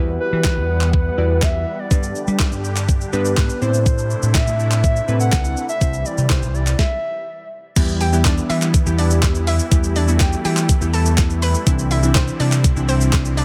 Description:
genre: dance-pop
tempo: 123 BPM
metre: 4/4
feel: straight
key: E minor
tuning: A4 = 440 Hz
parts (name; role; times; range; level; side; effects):
- glassy digital keys; accompaniment; 0.0-13.4 s; E3 to D5; -27 LUFS; equal; chorus, sidechain pumping
- filtered supersaw swell; sustained chords; 0.0-13.4 s; C3 to F#5; -32 LUFS; equal; sidechain pumping
- vintage slap bass; bass; 0.0-13.4 s; C2 to G3; -22 LUFS; equal; sidechain pumping
- hollow clarinet-like synth lead; melody; 0.2-7.5 s; B4 to F#5; -27 LUFS; equal; chorus, dub echo
- clean 12-bit digital drum machine; drums; 0.4-13.4 s; crash cymbal, handclaps, hi-hat, kick drum, shaker, snare drum; -21 LUFS; equal; none
- hollow square pluck; melody; 8.0-13.4 s; C4 to B5; -27 LUFS; equal; chorus, dub echo
room: digital ambience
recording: none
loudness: -18 LUFS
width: mono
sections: 0.0-7.8 A section; 7.8-13.4 B section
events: stop 6.8-7.8; drop 7.8-13.4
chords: 0.0 Emadd9; 1.9 G; 3.6 Amadd9; 5.8 C; 7.8 Em; 11.7 Cadd9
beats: 0.45 0.94 1.42 | 1.91 2.40 2.89 3.37 | 3.86 4.35 4.84 5.33 | 5.81 6.30 6.79 7.28 | 7.76 8.25 8.74 9.23 | 9.71 10.20 10.69 11.18 | 11.67 12.15 12.64 13.13

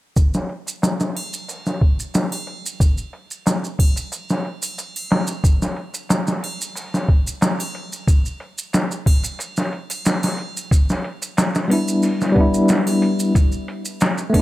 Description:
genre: trip hop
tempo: 91 BPM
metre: 4/4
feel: straight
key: unclear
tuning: A4 = 437 Hz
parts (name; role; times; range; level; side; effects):
- trip hop sampler-style drum kit; drums; 0.2-14.4 s; hi-hat, kick drum, snare drum; -18 LUFS; equal; low-pass filter on hats, low-pass filter on kick, low-pass filter on snare
- maracas and triangle; percussion; 0.2-14.4 s; none; -29 LUFS; right 3 dB; none
- tine electric piano; accompaniment; 11.7-14.4 s; G3 to E4; -17 LUFS; left 1 dB; tremolo, tape echo
room: digital ambience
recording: none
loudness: -18 LUFS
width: side -16 dB against mid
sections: 0.2-14.4 A section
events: none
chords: 0.2 N.C.; 10.7 G6; 13.4 Asus24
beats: | 0.17 0.83 1.49 2.15 | 2.81 3.46 4.12 4.78 | 5.44 6.10 6.76 7.42 | 8.08 8.74 9.40 10.06 | 10.72 11.38 12.04 12.70 | 13.35 14.01

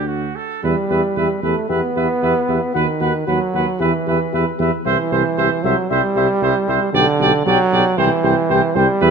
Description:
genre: classical, brass quintet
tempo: 114 BPM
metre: 4/4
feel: rubato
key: E minor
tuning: A4 = 441 Hz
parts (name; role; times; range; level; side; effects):
- mellow trumpet; melody; 0.0-9.1 s; E5 to G5; -24 LUFS; left 12 dB; none
- bright trumpet; second line; 0.0-9.1 s; F#4 to D5; -22 LUFS; right 8 dB; none
- clear trombone; accompaniment; 0.0-9.1 s; D3 to F#4; -19 LUFS; right 3 dB; none
- dark French horn; accompaniment; 0.0-9.1 s; D4 to G4; -24 LUFS; left 5 dB; none
- mellow tuba; bass; 0.0-9.1 s; B1 to E2; -21 LUFS; right 5 dB; none
room: moderate scoring stage reverb, RT60 2.0 s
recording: none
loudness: -15 LUFS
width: side -6 dB against mid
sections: 0.6-9.1 A section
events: none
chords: 0.0 D; 0.6 Em; 2.7 B/D#; 3.8 Em; 4.9 C; 6.9 G/B; 8.0 C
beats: 0.08 | 0.63 1.16 1.69 2.22 | 2.75 3.27 3.80 4.33 | 4.85 5.38 5.90 6.42 | 6.94 7.46 7.98 8.50 | 9.02

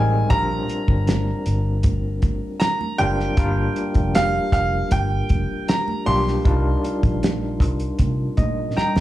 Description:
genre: lush 1970s-style soul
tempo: 78 BPM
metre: 4/4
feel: straight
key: G minor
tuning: A4 = 439 Hz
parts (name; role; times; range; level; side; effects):
- clear baby grand piano; melody; 0.0-9.0 s; F5 to C6; -24 LUFS; right 2 dB; slapback echo
- overdriven tine electric piano; accompaniment; 0.0-9.0 s; G3 to G5; -26 LUFS; left 1 dB; fast tremolo, slapback echo
- vintage muted fingered electric bass; bass; 0.0-9.0 s; F1 to C3; -22 LUFS; equal; none
- cloth-damped thuddy drum kit; drums; 0.3-9.0 s; hi-hat, kick drum, snare drum; -21 LUFS; equal; none
- congas; percussion; 0.3-9.0 s; none; -33 LUFS; right 9 dB; slapback echo
- vibraphone with medium mallets; texture; 4.2-9.0 s; G3 to G4; -33 LUFS; left 4 dB; none
room: little or no reverb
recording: live gig heard through the venue's PA, club reverb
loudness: -18 LUFS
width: side -14 dB against mid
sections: 0.0-9.0 A section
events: tine electric piano fill 8.0-9.0; drum fill 8.8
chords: 0.3 Bb69; 3.4 Gm7; 6.5 Cm11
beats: | 0.31 1.08 1.84 2.61 | 3.38 4.15 4.92 5.69 | 6.46 7.22 7.99 8.76

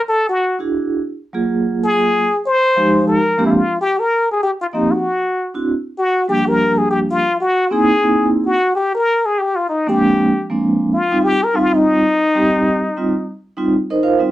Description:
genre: jazz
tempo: 194 BPM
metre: 4/4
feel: swing 61% on 8ths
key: Eb major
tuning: A4 = 439 Hz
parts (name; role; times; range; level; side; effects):
- trumpet with plunger mute; melody; 0.1-13.4 s; Eb4 to C5; -15 LUFS; left 1 dB; none
- vibraphone with medium mallets; accompaniment; 0.6-14.3 s; F3 to F5; -16 LUFS; right 2 dB; none
room: moderate studio ambience, RT60 0.5 s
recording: dark, warm production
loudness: -14 LUFS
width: side -14 dB against mid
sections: 0.0-3.8 A section; 3.8-13.7 B section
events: none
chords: 0.1 E9; 1.3 Gbmaj9; 2.6 Fm9; 3.2 Bb13; 3.8 Eb69; 5.0 D7; 6.3 Gm7; 7.5 C7alt; 8.8 Fmadd11; 10.0 Bb7; 11.2 Eb69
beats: | 0.10 0.41 0.71 1.02 | 1.33 1.64 1.95 2.26 | 2.57 2.88 3.19 3.50 | 3.81 4.11 4.42 4.73 | 5.04 5.35 5.66 5.97 | 6.28 6.59 6.90 7.21 | 7.52 7.83 8.14 8.45 | 8.76 9.07 9.38 9.69 | 9.99 10.30 10.61 10.92 | 11.23 11.54 11.85 12.16 | 12.47 12.78 13.09 13.39 | 13.70 14.01

